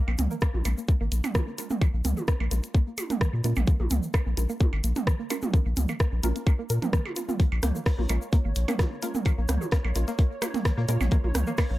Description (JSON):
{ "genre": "minimal techno", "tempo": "129 BPM", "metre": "4/4", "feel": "swing 53% on 16ths", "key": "Bb minor", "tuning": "A4 = 440 Hz", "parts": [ { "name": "string-like resonator pluck", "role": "riff", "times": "0.1-11.6 s", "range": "F3 to Bb4", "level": "-35 LUFS", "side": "equal", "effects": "chorus, sidechain pumping, tape echo" }, { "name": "saturated sub bass", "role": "bass", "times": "0.1-11.8 s", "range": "Ab1 to Bb2", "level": "-25 LUFS", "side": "equal", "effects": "sidechain pumping" }, { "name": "minimal click drum kit", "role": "percussion", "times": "0.1-11.7 s", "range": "percussion blips, rim click, toms", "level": "-32 LUFS", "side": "right 3 dB", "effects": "analog delay" }, { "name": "garage drum kit", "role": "drums", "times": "0.2-11.7 s", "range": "hi-hat, rim click", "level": "-34 LUFS", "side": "equal", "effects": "dub echo" }, { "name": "egg shaker", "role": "percussion", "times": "0.2-11.7 s", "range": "none", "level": "-41 LUFS", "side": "left 3 dB", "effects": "none" }, { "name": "electronic kick drum", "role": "drums", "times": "0.4-11.7 s", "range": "none", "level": "-22 LUFS", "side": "equal", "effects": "none" }, { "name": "filtered dub chord stab", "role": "stabs", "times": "0.7-11.0 s", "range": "Ab3 to Bb4", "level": "-38 LUFS", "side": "right 2 dB", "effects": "phaser, wide subtle chorus, dub echo" }, { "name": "cloth-damped thuddy drum kit", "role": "drums", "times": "7.4-11.7 s", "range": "hi-hat, snare drum", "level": "-47 LUFS", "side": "left 2 dB", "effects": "none" }, { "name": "pulsing gated texture", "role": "texture", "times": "7.6-11.8 s", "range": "Db5", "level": "-42 LUFS", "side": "right 3 dB", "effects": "chorus, built-in reverb, sidechain pumping" } ], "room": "little or no reverb", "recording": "echo-heavy mix", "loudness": "-24 LUFS", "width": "side -16 dB against mid", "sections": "0.0-11.8 A section", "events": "filter sweep on synth pluck 0.0-11.8", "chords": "0.0 Bbm" }